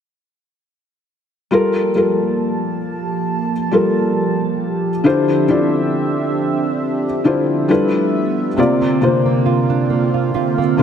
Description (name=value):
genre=R&B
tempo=68 BPM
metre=4/4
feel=swing 54% on 16ths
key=G dorian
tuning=A4 = 440 Hz
part: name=felt-muted upright piano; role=accompaniment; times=1.5-10.8 s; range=C3 to D5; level=-16 LUFS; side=left 2 dB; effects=none
part: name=chorused pulse-width pad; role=sustained chords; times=1.5-10.8 s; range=D3 to A5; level=-20 LUFS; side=right 2 dB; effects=none
part: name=nylon-string guitar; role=arpeggios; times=8.6-10.8 s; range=C3 to F4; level=-18 LUFS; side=right 8 dB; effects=ping-pong delay
room=moderate lush hall reverb, RT60 2.5 s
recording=none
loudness=-15 LUFS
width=side -8 dB against mid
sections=1.5-10.8 A section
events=none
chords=1.5 Gm9; 5.0 Dm11; 7.7 G13; 8.6 C9sus4